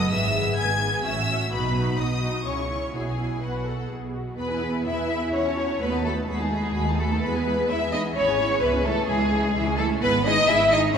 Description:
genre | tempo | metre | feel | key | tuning
quick classical-period movement for string orchestra | 128 BPM | 3/4 | straight | E major | A4 = 441 Hz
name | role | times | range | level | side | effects
warm symphonic violin section | melody | 0.0-11.0 s | E5 to G#6 | -32 LUFS | left 3 dB | none
rich symphonic violin section | second line | 0.0-11.0 s | F#4 to G#5 | -25 LUFS | left 2 dB | none
warm symphonic viola section | accompaniment | 0.0-11.0 s | E3 to B4 | -30 LUFS | equal | none
warm symphonic cello section | bass | 0.0-11.0 s | G#2 to E4 | -28 LUFS | right 2 dB | none
warm symphonic double bass section | bass | 0.0-11.0 s | G#1 to E2 | -29 LUFS | right 1 dB | none
room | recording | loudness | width
wet concert hall reverb, RT60 2.5 s | minimal, uncompressed stereo recording | -21 LUFS | side -7 dB against mid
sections
0.0-4.4 A section; 4.4-11.0 A section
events
none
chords
0.1 E/G#; 1.0 F#m7/A; 1.5 B; 2.5 C#m; 2.9 Bsus4; 3.9 B5; 4.4 E; 5.3 F#m7/E; 5.8 B7/D#; 7.2 E; 8.2 E/G#; 8.6 C#m; 10.0 E/G#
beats
| 0.11 0.58 1.05 | 1.52 1.99 2.47 | 2.95 3.43 3.91 | 4.39 4.87 5.34 | 5.81 6.28 6.75 | 7.22 7.69 8.16 | 8.62 9.09 9.56 | 10.03 10.49 10.96

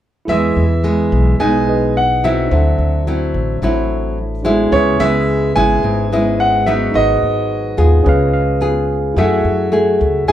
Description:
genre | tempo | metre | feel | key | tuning
bossa nova | 108 BPM | 4/4 | straight | E major | A4 = 441 Hz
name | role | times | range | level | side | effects
clear concert grand piano | melody | 0.3-10.3 s | C#5 to G#5 | -19 LUFS | right 2 dB | none
barky tine electric piano | accompaniment | 0.3-10.3 s | C#4 to E6 | -21 LUFS | right 1 dB | none
nylon-string guitar | accompaniment | 0.3-10.3 s | G#2 to G#4 | -16 LUFS | left 1 dB | none
upright bass | bass | 0.3-10.3 s | G#1 to F#2 | -18 LUFS | equal | none
room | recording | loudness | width
light reverb | band playing live in one room | -12 LUFS | side -11 dB against mid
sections
0.3-10.3 A section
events
tine electric piano fill 8.1-9.2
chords
0.3 Emaj7; 2.5 D9; 4.7 C#m7; 6.9 G#m7; 8.1 C#7; 9.2 F#m9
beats
| 0.28 0.84 1.39 1.95 | 2.50 3.06 3.61 4.17 | 4.72 5.28 5.83 6.39 | 6.95 7.50 8.05 8.61 | 9.16 9.72 10.28

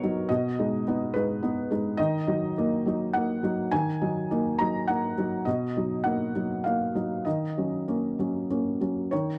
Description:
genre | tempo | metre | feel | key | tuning
neoclassical minimalist piano | 96-108 BPM | 3/4 | rubato | Eb minor | A4 = 442 Hz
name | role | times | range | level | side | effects
felt-muted upright piano | solo | 0.0-9.4 s | B2 to Bb5 | -28 LUFS | equal | none
room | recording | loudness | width
moderate booth ambience, RT60 0.2 s | dry, close 1970s-style studio recording | -28 LUFS | mono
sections
0.0-9.1 A section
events
none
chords
0.3 Abm/Cb; 2.0 Ebm; 5.5 Bmaj7; 7.3 Ebm7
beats
| 0.29 0.85 1.41 | 1.98 2.55 3.13 | 3.71 4.29 4.87 | 5.45 6.04 6.64 | 7.25 7.87 8.49 | 9.11

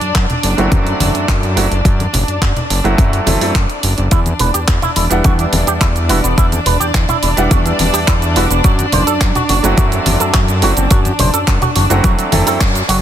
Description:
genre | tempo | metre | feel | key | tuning
nu-disco, nu disco | 106 BPM | 4/4 | straight | unclear | A4 = 444 Hz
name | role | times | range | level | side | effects
warm chamber string section | sustained chords | 0.0-13.0 s | D4 to D5 | -20 LUFS | left 1 dB | sidechain pumping
fat analog bass | bass | 0.0-13.0 s | E1 to F#2 | -17 LUFS | equal | none
house drum kit | drums | 0.0-13.0 s | handclaps, hi-hat, shaker | -19 LUFS | right 3 dB | soft clipping on snare
electronic kick drum | drums | 0.2-12.7 s | none | -14 LUFS | equal | none
congas | percussion | 0.3-12.4 s | none | -22 LUFS | left 2 dB | none
clear grand piano | accompaniment | 0.6-12.6 s | F#3 to F#5 | -19 LUFS | right 2 dB | low-pass filter, dub echo
electric guitar with an envelope filter | riff | 4.1-13.0 s | E3 to C5 | -20 LUFS | right 2 dB | wide subtle chorus, dub echo
room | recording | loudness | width
light reverb, studio reverb | dense, heavily limited modern master | -11 LUFS | side -10 dB against mid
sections
0.0-13.0 A section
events
band accent 12.6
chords
0.0 F#m7b5; 4.1 Em7; 8.6 F#m7b5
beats
0.15 0.72 1.29 | 1.85 2.42 2.98 3.55 | 4.12 4.68 5.25 5.82 | 6.38 6.95 7.51 8.08 | 8.64 9.21 9.78 10.34 | 10.91 11.47 12.04 12.61

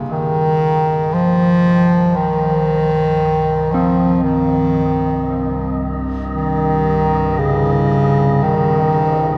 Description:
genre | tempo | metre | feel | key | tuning
dark ambient drone | 58 BPM | 4/4 | straight | unclear | A4 = 440 Hz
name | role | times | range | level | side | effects
gamelan-type bronze metallophone | arpeggios | 0.0-9.4 s | Bb3 to C4 | -26 LUFS | equal | delay
analog drone | drone | 0.0-9.4 s | C2 to G2 | -26 LUFS | equal | chorus
wind-like tuned noise texture | texture | 0.0-9.4 s | Eb5 | -33 LUFS | equal | built-in reverb
clear bass clarinet | melody | 0.1-9.4 s | Db3 to F3 | -17 LUFS | equal | delay
room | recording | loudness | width
wet cathedral reverb, RT60 5.0 s | none | -16 LUFS | mono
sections
0.0-9.4 A section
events
fade-in on synth drone 0.0-9.4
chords
0.0 Cm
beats
| 0.11 1.15 2.18 3.22 | 4.26 5.29 6.33 7.38 | 8.42

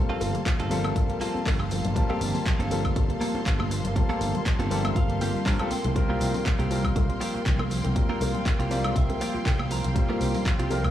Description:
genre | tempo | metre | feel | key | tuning
nu-disco, nu disco | 120 BPM | 4/4 | swing 54% on 16ths | G minor | A4 = 440 Hz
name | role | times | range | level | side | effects
warm concert grand piano | accompaniment | 0.0-10.9 s | G3 to A5 | -31 LUFS | left 3 dB | sidechain pumping, analog delay
rich symphonic string section | sustained chords | 0.0-10.9 s | Bb3 to C6 | -36 LUFS | equal | sidechain pumping
wide unison pluck | arpeggios | 0.1-10.9 s | F3 to F4 | -36 LUFS | right 3 dB | sidechain pumping, analog delay
direct-recorded clean electric guitar | riff | 0.1-10.8 s | Bb3 to Bb5 | -34 LUFS | right 3 dB | wide subtle chorus, analog delay
fingered electric bass | bass | 0.2-10.9 s | G1 to G2 | -28 LUFS | right 1 dB | none
house drum kit | drums | 0.2-10.9 s | handclaps, hi-hat, woodblock | -34 LUFS | equal | none
bongos, tube shaker and congas | percussion | 0.2-10.9 s | none | -35 LUFS | left 4 dB | none
electronic kick drum | drums | 0.5-10.9 s | none | -25 LUFS | equal | none
room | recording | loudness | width
light reverb | dry, gritty hardware recording, small room reverb | -23 LUFS | side -12 dB against mid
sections
0.0-10.9 A section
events
clean electric guitar fill 4.5-6.0, 8.5-10.0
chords
0.0 Gm11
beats
0.46 0.96 1.46 | 1.96 2.46 2.96 3.46 | 3.96 4.46 4.96 5.46 | 5.96 6.46 6.96 7.46 | 7.96 8.46 8.96 9.46 | 9.96 10.46

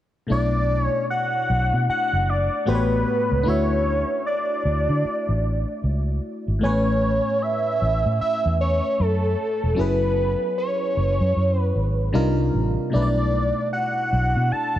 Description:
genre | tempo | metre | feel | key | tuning
R&B, neo-soul | 76 BPM | 4/4 | swing 61% on 16ths | B dorian | A4 = 439 Hz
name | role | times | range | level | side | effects
fat analog lead | melody | 0.3-14.8 s | A4 to A5 | -23 LUFS | equal | none
FM electric piano | accompaniment | 0.3-14.8 s | A2 to G#5 | -26 LUFS | left 2 dB | chorus
vintage muted fingered electric bass | bass | 0.3-14.8 s | E1 to D3 | -22 LUFS | equal | none
room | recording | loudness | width
moderate plate reverb, RT60 3.1 s | dreamy mix soaked in reverb | -20 LUFS | side -12 dB against mid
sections
0.3-14.8 A section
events
none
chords
0.3 Bm7; 2.7 A13; 3.5 Dmaj9; 6.6 Amaj7; 9.8 F#9sus4; 12.1 Cm11; 12.9 Bm7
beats
| 0.30 1.08 1.88 2.66 | 3.45 4.24 5.03 5.82 | 6.61 7.40 8.19 8.98 | 9.77 10.56 11.35 12.14 | 12.93 13.72 14.51

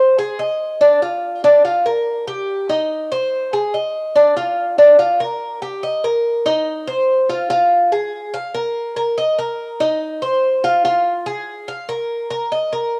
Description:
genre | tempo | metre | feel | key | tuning
latin | 144 BPM | 4/4 | straight | unclear | A4 = 440 Hz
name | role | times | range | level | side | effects
Cuban tres | solo | 0.0-13.0 s | D4 to F5 | -18 LUFS | equal | none
room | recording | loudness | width
light reverb, small room ambience | home recording on cassette | -18 LUFS | mono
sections
0.0-5.8 A section; 5.8-13.0 B section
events
none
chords
none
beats
0.40 | 0.81 1.23 1.65 2.07 | 2.48 2.90 3.32 3.74 | 4.16 4.58 4.99 5.41 | 5.83 6.25 6.67 7.08 | 7.50 7.92 8.34 8.76 | 9.17 9.59 10.01 10.43 | 10.85 11.26 11.68 12.10 | 12.52 12.94

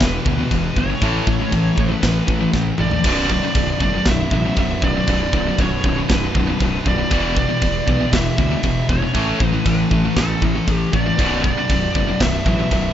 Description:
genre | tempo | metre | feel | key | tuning
heavy metal | 118 BPM | 4/4 | straight | B minor | A4 = 442 Hz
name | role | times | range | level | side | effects
high-gain lead guitar | melody | 0.0-12.9 s | A4 to E5 | -25 LUFS | right 2 dB | distortion
rich studio string section | sustained chords | 0.0-12.9 s | C#3 to B4 | -34 LUFS | equal | none
high-gain distorted guitar | riff | 0.0-12.9 s | B1 to A3 | -23 LUFS | left 9 dB | distortion
high-gain distorted guitar | riff | 0.0-12.9 s | B1 to A3 | -24 LUFS | right 7 dB | distortion
high-gain distorted guitar | riff | 0.0-12.9 s | B1 to A3 | -26 LUFS | equal | distortion
fuzz fingered electric bass | bass | 0.0-12.9 s | B0 to D2 | -23 LUFS | equal | overdrive
tight metal drum kit | drums | 0.0-12.8 s | crash cymbal, kick drum, snare drum, toms | -21 LUFS | equal | none
room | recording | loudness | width
small room ambience | rough home demo mix, nothing above 7.8 kHz | -16 LUFS | side -10 dB against mid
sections
0.0-3.0 A section; 3.0-12.9 A section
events
half time 0.0-3.0, 3.0-12.9; drum fill 2.5-3.0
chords
0.0 Em; 1.0 A; 3.0 Bm; 7.1 Em; 9.1 A; 11.2 Bm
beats
0.00 0.51 | 1.01 1.52 2.03 2.54 | 3.04 3.55 4.06 4.57 | 5.08 5.58 6.09 6.60 | 7.11 7.62 8.13 8.64 | 9.15 9.65 10.16 10.67 | 11.18 11.69 12.20 12.71

